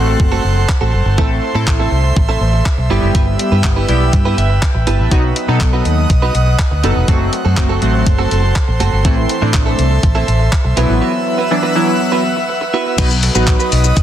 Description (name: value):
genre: dance-pop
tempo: 122 BPM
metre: 4/4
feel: straight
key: unclear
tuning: A4 = 442 Hz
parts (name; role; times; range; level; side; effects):
- chorused retro synth keys; accompaniment; 0.0-13.7 s; E3 to A5; -18 LUFS; left 1 dB; tremolo, sidechain pumping
- airy breathy pad; sustained chords; 0.0-14.0 s; A4 to E6; -21 LUFS; right 2 dB; chorus, sidechain pumping
- vintage muted fingered electric bass; bass; 0.0-14.0 s; E1 to B2; -14 LUFS; equal; sidechain pumping
- direct-recorded clean electric guitar; riff; 0.1-14.0 s; A3 to B4; -22 LUFS; right 6 dB; lush chorus
- crisp 8-bit digital drum machine; drums; 0.2-14.0 s; crash cymbal, handclaps, hi-hat, kick drum, shaker; -15 LUFS; equal; none
room: light reverb, digital ambience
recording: dense, heavily limited modern master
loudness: -12 LUFS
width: side -11 dB against mid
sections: 0.0-13.0 A section; 13.0-14.0 B section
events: synth keys fill 4.1-5.1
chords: 0.0 F#dim; 1.2 Am; 2.9 Em; 5.1 B; 7.1 F#dim; 9.1 Am; 10.8 Bsus4; 13.0 B